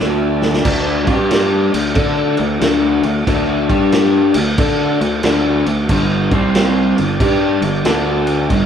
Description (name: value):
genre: blues rock power trio and southern rock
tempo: 92 BPM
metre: 4/4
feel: swing 64% on 8ths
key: D mixolydian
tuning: A4 = 439 Hz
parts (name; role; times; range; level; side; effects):
- overdriven tonewheel organ; sustained chords; 0.0-8.5 s; G3 to D5; -26 LUFS; right 4 dB; slow rotary speaker
- raw garage guitar; riff; 0.0-8.7 s; G2 to D5; -15 LUFS; left 2 dB; overdrive
- fuzz fingered electric bass; bass; 0.0-8.7 s; G1 to D3; -21 LUFS; right 1 dB; overdrive
- vintage drum kit; drums; 0.0-8.7 s; crash cymbal, kick drum, snare drum; -18 LUFS; right 1 dB; none
room: moderate large studio reverb, RT60 1.1 s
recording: band playing live in one room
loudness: -13 LUFS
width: side -8 dB against mid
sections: 0.7-8.7 A section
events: drum fill 0.0-0.7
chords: 0.0 D5; 1.0 G5; 1.6 D; 3.6 G5; 4.3 D; 5.9 G5; 6.2 C5; 6.9 G5; 7.8 D5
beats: 0.01 | 0.67 1.32 1.97 2.63 | 3.28 3.93 4.59 5.24 | 5.89 6.54 7.20 7.85 | 8.50